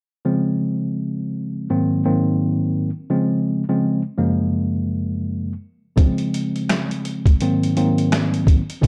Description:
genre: hip hop, boom-bap hip-hop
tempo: 84 BPM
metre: 4/4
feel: swing 60% on 16ths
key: unclear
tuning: A4 = 441 Hz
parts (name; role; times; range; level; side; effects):
- tine electric piano; accompaniment; 0.2-8.9 s; Gb2 to C4; -22 LUFS; equal; cassette tape, high-pass filter, low-pass filter, plate reverb
- trip hop sampler-style drum kit; drums; 6.0-8.9 s; hi-hat, kick drum, rim click, snare drum; -20 LUFS; equal; none
room: moderate studio reverb, RT60 0.5 s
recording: dark, warm production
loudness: -20 LUFS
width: mono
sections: 0.3-8.9 A section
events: none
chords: 0.3 Dbmaj7; 1.7 Ab7; 3.1 Dbmaj7; 4.2 Gbmaj7; 6.0 Dbmaj7; 7.4 Ab7

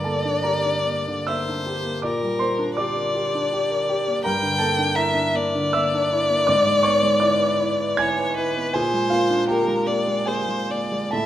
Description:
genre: classical, romantic duo for violin and grand piano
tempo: 69-86 BPM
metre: 3/4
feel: rubato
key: unclear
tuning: A4 = 441 Hz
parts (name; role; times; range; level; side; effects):
- clear violin; melody; 0.0-11.3 s; Bb4 to G5; -22 LUFS; left 2 dB; none
- warm concert grand piano; accompaniment; 0.0-11.3 s; G2 to G#6; -22 LUFS; right 2 dB; none
room: wet recital hall reverb, RT60 1.4 s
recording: none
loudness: -19 LUFS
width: side -12 dB against mid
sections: 0.0-11.3 A section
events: none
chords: 0.0 Gm; 2.0 Gm/Bb; 4.2 Em7b5/G; 6.5 E7/G#; 8.7 Bb7

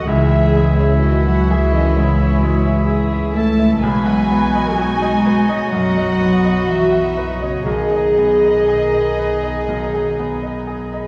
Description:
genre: cinematic, emotional film score for orchestra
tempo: 59-65 BPM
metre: 4/4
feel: rubato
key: C# minor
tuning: A4 = 441 Hz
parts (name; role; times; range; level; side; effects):
- dark studio violin section; melody; 0.0-10.7 s; C#5 to A5; -28 LUFS; equal; none
- bright clarinet; second line; 0.0-11.1 s; E4 to G#4; -29 LUFS; equal; none
- bright oboe; second line; 0.0-11.1 s; D#5 to E5; -32 LUFS; equal; none
- rich studio violin section; second line; 0.0-11.1 s; C#4 to G#4; -32 LUFS; equal; none
- bright baby grand piano; accompaniment; 0.0-11.1 s; B1 to F#5; -27 LUFS; equal; none
- warm studio viola section; accompaniment; 0.0-11.1 s; D#4 to B4; -26 LUFS; equal; none
- mellow French horn section; sustained chords; 0.0-11.1 s; D#3 to G#4; -25 LUFS; equal; none
- concert harp; arpeggios; 0.0-11.1 s; B2 to E6; -27 LUFS; equal; none
- dark studio cello section; bass; 0.0-10.7 s; C#3 to A3; -23 LUFS; equal; none
- warm studio double bass section; bass; 0.0-11.1 s; B1 to C#2; -23 LUFS; equal; none
room: wet scoring stage reverb, RT60 1.6 s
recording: vinyl crackle, small room reverb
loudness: -16 LUFS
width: mono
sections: 0.0-11.1 A section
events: none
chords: 0.1 C#m; 3.8 B; 7.7 G#m/B

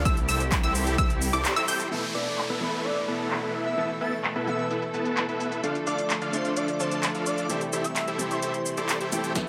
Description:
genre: EDM, festival progressive house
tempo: 129 BPM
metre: 4/4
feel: straight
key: A minor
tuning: A4 = 438 Hz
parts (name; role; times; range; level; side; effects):
- rich symphonic string section; sustained chords; 0.0-9.5 s; B2 to A4; -38 LUFS; equal; sidechain pumping, low-pass filter
- unison pluck; arpeggios; 0.0-1.9 s; D6 to G6; -31 LUFS; equal; sidechain pumping, digital delay
- dense compressed supersaw; riff; 0.0-9.5 s; B3 to A5; -32 LUFS; equal; sidechain pumping, low-pass filter, digital delay
- detuned saw bass; bass; 0.0-1.4 s; C2; -31 LUFS; equal; chorus, sidechain pumping
- big-room dance drum kit; drums; 0.1-9.4 s; cabasa, crash cymbal, handclaps, hi-hat, snare drum; -33 LUFS; equal; low-pass filter on hats, low-pass filter on perc, low-pass filter on snare, low-pass filter on cymbals, low-pass filter on room
- electronic kick drum; drums; 0.1-1.1, 9.4 s; none; -28 LUFS; equal; high-pass filter on kick, high-pass filter on room
- clear baby grand piano; accompaniment; 1.9-9.5 s; E3 to A4; -35 LUFS; equal; vintage 12-bit sampler grit, sidechain pumping, digital delay
- downlifter, swell and riser; sound effects; 1.9-9.5 s; none; -39 LUFS; equal; none
- airy dreamy lead; melody; 2.1-9.0 s; B4 to A5; -35 LUFS; equal; chorus, digital delay
room: moderate lush hall reverb, RT60 2.0 s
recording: none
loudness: -27 LUFS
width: mono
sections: 0.0-1.9 A section; 1.9-9.4 B section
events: drop 0.0-1.9; band accent 1.4; filter sweep on drum 1.9-9.4; filter sweep on supersaw synth 1.9-9.4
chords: 0.1 C6; 1.9 Asus2; 5.6 Dm; 7.5 C6

